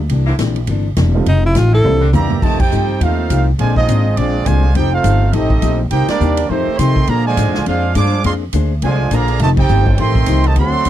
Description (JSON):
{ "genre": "jazz, big band swing", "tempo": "206 BPM", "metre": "4/4", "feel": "swing 59% on 8ths", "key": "F major", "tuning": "A4 = 444 Hz", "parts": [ { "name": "upright bass", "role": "bass", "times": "0.0-10.9 s", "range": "E1 to C3", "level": "-15 LUFS", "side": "equal", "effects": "none" }, { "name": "vintage hollow-body jazz guitar", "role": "accompaniment", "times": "0.1-10.9 s", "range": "Bb2 to C5", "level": "-22 LUFS", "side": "left 10 dB", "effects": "none" }, { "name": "swinging big-band drum kit", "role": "drums", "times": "0.1-10.9 s", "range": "crash cymbal, hi-hat, kick drum, ride cymbal, snare drum, toms", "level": "-22 LUFS", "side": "equal", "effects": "none" }, { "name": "clear saxophone section", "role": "sustained chords", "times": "0.3-2.1 s", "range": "D3 to E4", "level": "-22 LUFS", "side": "equal", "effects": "none" }, { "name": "warm upright piano", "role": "accompaniment", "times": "1.1-2.0 s", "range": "G3 to F4", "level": "-21 LUFS", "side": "right 7 dB", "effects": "none" }, { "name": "breathy tenor saxophone", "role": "melody", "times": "1.3-2.1 s", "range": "Eb4 to A4", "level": "-16 LUFS", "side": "left 1 dB", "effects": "none" }, { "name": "clear trumpet section", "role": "melody", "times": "2.1-10.9 s", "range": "A3 to D6", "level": "-19 LUFS", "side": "right 4 dB", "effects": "none" }, { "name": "brilliant trombone section", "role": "second line", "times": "2.1-10.9 s", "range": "C3 to G4", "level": "-22 LUFS", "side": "right 5 dB", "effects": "slapback echo" } ], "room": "little or no reverb", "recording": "dry, close 1970s-style studio recording", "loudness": "-12 LUFS", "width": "side -12 dB against mid", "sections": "0.0-2.4 A section; 2.4-10.9 B section", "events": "tenor saxophone solo 0.0-2.4; drum fill 1.8-2.4; band accent 2.6, 6.1, 9.6", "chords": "0.1 C9; 1.3 F9; 1.8 C9; 2.4 F9; 3.6 Bb9; 4.8 F9; 5.9 Cm7; 6.5 F9; 7.1 Bb9; 9.4 F9" }